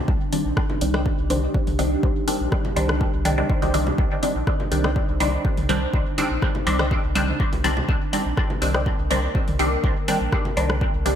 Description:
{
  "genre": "dub techno",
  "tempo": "123 BPM",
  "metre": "4/4",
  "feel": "straight",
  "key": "C minor",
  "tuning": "A4 = 439 Hz",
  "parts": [
    { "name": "deep dark ambient pad", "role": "sustained chords", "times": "0.0-11.2 s", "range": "D4 to C5", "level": "-29 LUFS", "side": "equal", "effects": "chorus, built-in reverb, sidechain pumping" },
    { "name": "warm sub bass", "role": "bass", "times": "0.1-11.2 s", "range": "Bb1 to C2", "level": "-25 LUFS", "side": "equal", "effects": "sidechain pumping" },
    { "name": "electronic kick drum", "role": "drums", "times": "0.1-10.9 s", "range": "none", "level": "-24 LUFS", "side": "equal", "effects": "studio reverb" },
    { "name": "filtered dub chord stab", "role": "stabs", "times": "0.3-11.2 s", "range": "Eb3 to D4", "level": "-24 LUFS", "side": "equal", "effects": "phaser, sidechain pumping, dub echo" },
    { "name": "deep house drum kit", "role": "drums", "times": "0.3-11.2 s", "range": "hi-hat, rim click", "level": "-31 LUFS", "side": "left 1 dB", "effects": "studio reverb, dub echo" },
    { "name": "electronic congas and toms", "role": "percussion", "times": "0.7-11.2 s", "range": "none", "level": "-33 LUFS", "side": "equal", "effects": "sidechain pumping on perc, studio reverb, sidechain pumping on toms, dub echo" },
    { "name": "wavetable chord stab", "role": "riff", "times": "0.9-8.8 s", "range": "C5 to G5", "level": "-34 LUFS", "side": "left 1 dB", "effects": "sidechain pumping, dub echo" }
  ],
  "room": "light reverb, digital ambience",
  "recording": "none",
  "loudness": "-19 LUFS",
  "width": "side -9 dB against mid",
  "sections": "0.0-11.2 A section",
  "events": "none",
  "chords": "0.0 Cmadd9"
}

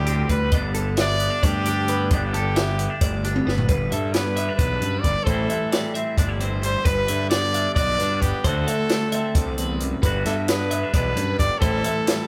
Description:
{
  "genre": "math rock and midwest emo",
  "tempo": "265 BPM (eighths)",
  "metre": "7/8",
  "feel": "straight",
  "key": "G major",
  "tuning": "A4 = 439 Hz",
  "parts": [
    { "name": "clear trumpet", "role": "melody", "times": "0.0-12.3 s", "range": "G4 to D5", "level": "-28 LUFS", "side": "equal", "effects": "none" },
    { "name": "twangy electric guitar", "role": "accompaniment", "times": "0.0-12.3 s", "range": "D2 to F#4", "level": "-30 LUFS", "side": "equal", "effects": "harmonic tremolo" },
    { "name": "twelve-string electric guitar", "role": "arpeggios", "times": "0.0-12.3 s", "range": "G4 to E5", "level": "-32 LUFS", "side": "equal", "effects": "none" },
    { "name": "fuzz picked electric bass", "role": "bass", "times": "0.0-11.8 s", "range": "G1 to G2", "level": "-28 LUFS", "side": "equal", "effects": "overdrive" },
    { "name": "compact cocktail drum kit", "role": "drums", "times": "0.1-12.2 s", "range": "hi-hat, kick drum, snare drum, toms", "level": "-26 LUFS", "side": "equal", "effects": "none" }
  ],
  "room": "moderate large studio reverb, RT60 1.1 s",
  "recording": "band playing live in one room",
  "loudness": "-22 LUFS",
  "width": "mono",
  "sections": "0.0-3.7 A section; 3.7-12.3 B section",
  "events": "drum fill 3.4-3.7",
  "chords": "0.0 D7sus4; 0.5 Gadd9; 3.7 Gmaj7; 5.3 Am7; 6.9 Gmaj7; 8.4 D7; 10.0 Gmaj7; 11.6 Am7"
}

